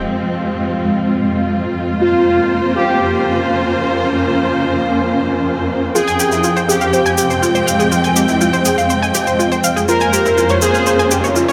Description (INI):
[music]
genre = melodic techno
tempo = 122 BPM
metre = 4/4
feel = straight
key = F minor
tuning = A4 = 438 Hz
[part]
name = clear symphonic string section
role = sustained chords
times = 0.0-11.5 s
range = F3 to G5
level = -21 LUFS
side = equal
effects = none
[part]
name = swarming drone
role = drone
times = 0.0-11.5 s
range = F2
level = -26 LUFS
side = equal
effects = built-in reverb
[part]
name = sub drop and riser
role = sound effects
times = 0.0, 11.2-11.5 s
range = none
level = -32 LUFS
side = equal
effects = none
[part]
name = granular cloud pad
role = texture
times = 0.0-11.5 s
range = Ab3 to F5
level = -22 LUFS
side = equal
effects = built-in reverb
[part]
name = analog synth brass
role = melody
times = 2.0-11.3 s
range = F4 to Bb4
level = -20 LUFS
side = equal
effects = chorus, delay
[part]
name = analog pluck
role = arpeggios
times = 6.0-11.5 s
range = E4 to Ab5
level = -19 LUFS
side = equal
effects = chorus, cassette tape, tape echo
[part]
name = cabasa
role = percussion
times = 6.0-11.5 s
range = none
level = -24 LUFS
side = equal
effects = none
[sound]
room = wet lush hall reverb, RT60 2.1 s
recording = none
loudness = -15 LUFS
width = mono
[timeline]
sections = 0.0-11.5 A section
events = none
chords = 0.0 Fm; 2.0 Bbm; 5.9 Fm; 9.9 Bbm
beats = | 0.05 0.54 1.03 1.52 | 2.01 2.51 3.00 3.49 | 3.98 4.47 4.96 5.46 | 5.95 6.44 6.93 7.42 | 7.92 8.41 8.90 9.39 | 9.88 10.38 10.87 11.36